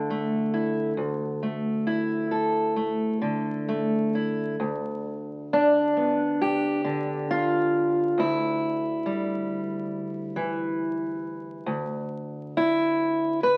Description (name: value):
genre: folk, solo fingerstyle acoustic guitar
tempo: 68 BPM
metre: 4/4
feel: rubato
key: unclear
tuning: A4 = 440 Hz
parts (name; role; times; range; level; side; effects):
- fingerpicked steel-string acoustic guitar; solo; 0.0-13.6 s; D2 to B4; -26 LUFS; equal; none
room: moderate large studio reverb, RT60 1.2 s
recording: very old 78 rpm record, vinyl crackle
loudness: -26 LUFS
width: mono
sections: 0.0-4.6 A section; 4.6-13.6 B section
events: none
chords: 0.0 Dsus2; 4.6 G/D; 8.2 Dsus24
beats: 0.09 | 0.97 1.86 2.76 3.69 | 4.61 5.51 6.41 7.29 | 8.18 9.05 9.92 10.79 | 11.67 12.54 13.42